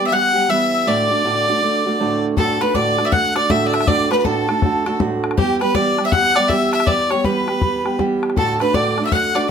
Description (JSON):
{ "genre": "celtic folk, Celtic hornpipe", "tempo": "160 BPM", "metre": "4/4", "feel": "swing 63% on 8ths", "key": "D major", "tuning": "A4 = 440 Hz", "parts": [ { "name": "bright fiddle", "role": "melody", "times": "0.0-9.5 s", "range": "G4 to F#5", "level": "-19 LUFS", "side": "equal", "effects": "plate reverb" }, { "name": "bowl-back mandolin", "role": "second line", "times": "0.0-9.5 s", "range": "G4 to F#5", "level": "-25 LUFS", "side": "right 2 dB", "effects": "none" }, { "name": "breathy tin whistle", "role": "second line", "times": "0.0-9.5 s", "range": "G5 to F#6", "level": "-23 LUFS", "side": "left 7 dB", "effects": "none" }, { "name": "fingerpicked steel-string acoustic guitar", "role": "accompaniment", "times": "0.0-9.5 s", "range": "D2 to G4", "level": "-20 LUFS", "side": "right 4 dB", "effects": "none" }, { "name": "bodhran", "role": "percussion", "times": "2.4-9.4 s", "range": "none", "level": "-22 LUFS", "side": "left 4 dB", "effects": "none" } ], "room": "moderate small room reverb, RT60 0.6 s", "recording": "none", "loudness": "-15 LUFS", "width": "side -7 dB against mid", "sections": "0.0-2.4 A section; 2.4-9.5 A section", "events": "none", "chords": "0.0 Em; 0.9 D; 5.4 Em; 8.4 D" }